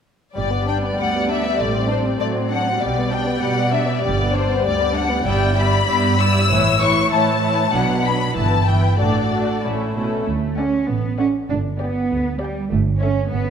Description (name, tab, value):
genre	quick classical-period movement for string orchestra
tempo	98 BPM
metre	2/4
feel	rubato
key	G major, D major from 5.3 s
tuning	A4 = 440 Hz
part	dark chamber violin section	second line	0.3-13.2 s	G3 to D5	-24 LUFS	left 2 dB	none
part	rich studio violin section	melody	0.4-13.2 s	C5 to E6	-21 LUFS	left 6 dB	none
part	rich chamber viola section	accompaniment	0.4-13.2 s	E3 to A4	-25 LUFS	right 1 dB	none
part	rich chamber double bass section	bass	0.4-13.5 s	G1 to D2	-25 LUFS	right 3 dB	none
part	warm symphonic cello section	bass	0.4-13.5 s	D2 to D4	-22 LUFS	right 3 dB	none
room	wet scoring stage reverb, RT60 1.6 s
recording	minimal, uncompressed stereo recording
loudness	-17 LUFS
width	side -7 dB against mid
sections	0.4-10.3 A section; 10.3-13.5 B section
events	none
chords	0.4 G; 1.6 D7/A; 2.8 G/B; 4.1 G; 5.3 Em7/G; 6.5 A; 7.7 Bm; 8.3 Em/G; 9.0 D/A; 9.6 A; 10.3 D; 11.5 G; 12.7 A7/G